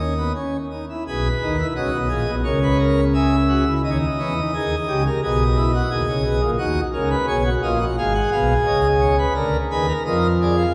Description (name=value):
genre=classical, baroque-style 3-part fugue for pipe organ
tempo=86 BPM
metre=4/4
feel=straight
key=G# minor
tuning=A4 = 439 Hz
part: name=pipe organ, plenum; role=solo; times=0.0-10.7 s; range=Ab1 to F#5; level=-20 LUFS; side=equal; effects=none
room=wet church reverb, RT60 3.1 s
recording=heard from further back in the room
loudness=-20 LUFS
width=mono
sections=0.0-1.0 A section; 1.0-10.7 B section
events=none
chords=0.0 N.C.; 1.0 G#m/B; 2.4 A#m7b5/C#; 3.8 D#7; 5.2 G#m/B; 6.6 D#m; 8.0 Fm7b5/Ab; 9.4 A#7/D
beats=0.33 | 1.04 1.75 2.44 3.14 | 3.83 4.53 5.22 5.91 | 6.60 7.29 7.98 8.67 | 9.36 10.05